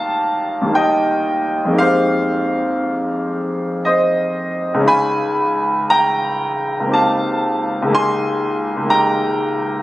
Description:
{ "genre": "classical, impressionist solo piano", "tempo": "58 BPM", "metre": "3/4", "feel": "rubato", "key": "unclear", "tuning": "A4 = 440 Hz", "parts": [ { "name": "clear concert grand piano", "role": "solo", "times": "0.0-9.8 s", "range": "Db2 to C6", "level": "-15 LUFS", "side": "equal", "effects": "none" } ], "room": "moderate concert hall reverb, RT60 1.9 s", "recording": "recorded on a phone in the room, studio ambience", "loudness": "-15 LUFS", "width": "side -16 dB against mid", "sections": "0.0-9.8 A section", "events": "none", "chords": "0.0 Ebadd9; 1.8 Fm11; 4.9 Db9; 6.9 Cm7/Db; 7.9 Fm11/Db (rootless)" }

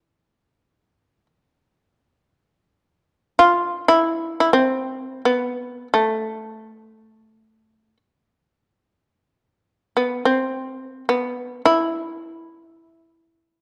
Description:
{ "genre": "japanese traditional, Japanese chamber music", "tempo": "free time", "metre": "none", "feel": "none", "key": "E miyako bushi", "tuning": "A4 = 440 Hz", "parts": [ { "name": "shamisen", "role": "solo", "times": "0.0-13.6 s", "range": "A3 to F4", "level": "-20 LUFS", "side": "equal", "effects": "none" } ], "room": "moderate recital hall reverb, RT60 1.6 s", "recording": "dark, warm production", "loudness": "-21 LUFS", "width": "mono", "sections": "0.0-13.6 A section", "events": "none", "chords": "none" }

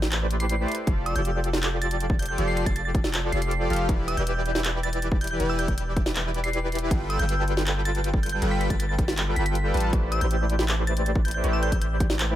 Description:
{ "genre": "future bass", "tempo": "159 BPM", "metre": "4/4", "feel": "half-time", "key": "unclear", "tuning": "A4 = 440 Hz", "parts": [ { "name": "soft supersaw", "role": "riff", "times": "0.0-12.4 s", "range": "E3 to A5", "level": "-28 LUFS", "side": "equal", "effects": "sidechain pumping" }, { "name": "long sustained 808-style bass", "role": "bass", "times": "0.0-12.4 s", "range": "E1 to A1", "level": "-27 LUFS", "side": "equal", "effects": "sidechain pumping" }, { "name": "trap drum kit", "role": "drums", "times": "0.0-12.3 s", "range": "handclaps, hi-hat, snare drum", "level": "-29 LUFS", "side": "equal", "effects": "none" }, { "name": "glassy synth bell", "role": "melody", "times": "0.4-11.9 s", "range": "E6 to C7", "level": "-32 LUFS", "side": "equal", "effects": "chorus, phaser, sidechain pumping, tape echo" }, { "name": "electronic kick drum", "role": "drums", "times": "0.9-12.1 s", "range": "none", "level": "-24 LUFS", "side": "equal", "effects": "none" } ], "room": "little or no reverb", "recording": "none", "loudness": "-22 LUFS", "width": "side -12 dB against mid", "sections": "0.0-12.4 A section", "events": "none", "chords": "0.0 Am11; 0.7 F6; 3.9 Em7; 6.9 G7; 9.9 Am11" }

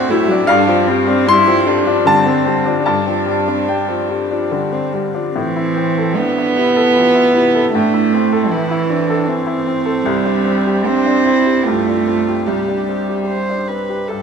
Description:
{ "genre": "neoclassical piano and strings", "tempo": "71-79 BPM", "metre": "3/4", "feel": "rubato", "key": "A minor", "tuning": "A4 = 440 Hz", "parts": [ { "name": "warm cello", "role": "second line", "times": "0.0-14.1 s", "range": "E3 to F#4", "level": "-16 LUFS", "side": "right 4 dB", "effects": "none" }, { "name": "bright upright piano", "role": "accompaniment", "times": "0.0-14.2 s", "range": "C2 to C6", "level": "-17 LUFS", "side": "left 5 dB", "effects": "none" }, { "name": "dark viola", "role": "accompaniment", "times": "0.0-14.2 s", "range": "D3 to C5", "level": "-21 LUFS", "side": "right 3 dB", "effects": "none" } ], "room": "moderate concert hall reverb, RT60 2.3 s", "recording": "minimal, uncompressed stereo recording", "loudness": "-13 LUFS", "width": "side -6 dB against mid", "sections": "0.0-5.3 A section; 5.3-14.2 A section", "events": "none", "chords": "0.5 G7sus4; 5.3 Amadd9; 10.0 Csus2" }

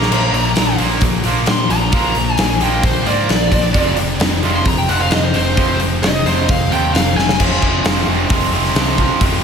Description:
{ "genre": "hard rock", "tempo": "132 BPM", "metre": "4/4", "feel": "straight", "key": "unclear", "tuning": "A4 = 441 Hz", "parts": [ { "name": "smooth overdriven lead guitar", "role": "melody", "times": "0.0-7.4 s", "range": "C5 to C6", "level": "-20 LUFS", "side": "equal", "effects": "slapback echo, analog delay" }, { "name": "high-gain distorted guitar", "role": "riff", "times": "0.0-9.4 s", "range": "F2 to Bb3", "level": "-23 LUFS", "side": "left 9 dB", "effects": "distortion, slapback echo" }, { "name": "overdriven semi-hollow guitar", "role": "riff", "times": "0.0-9.4 s", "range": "F2 to Bb3", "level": "-22 LUFS", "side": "right 9 dB", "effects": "spring reverb, slapback echo" }, { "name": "overdriven picked electric bass", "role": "bass", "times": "0.0-9.4 s", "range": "F1 to Bb2", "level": "-20 LUFS", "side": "equal", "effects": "none" }, { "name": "big rock drum kit", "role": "drums", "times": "0.0-9.3 s", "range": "crash cymbal, hi-hat, kick drum, snare drum", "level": "-17 LUFS", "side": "left 1 dB", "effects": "none" }, { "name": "distorted electric guitar", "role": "riff", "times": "0.1-9.4 s", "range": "F2 to D4", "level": "-23 LUFS", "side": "equal", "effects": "overdrive, slapback echo" } ], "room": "moderate scoring stage reverb, RT60 2.0 s", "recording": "big arena sound", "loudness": "-13 LUFS", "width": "side -6 dB against mid", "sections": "0.0-7.4 A section; 7.4-9.4 B section", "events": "lead electric guitar solo 0.0-7.4; drum fill 7.2", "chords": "0.0 Bb; 3.8 Fm" }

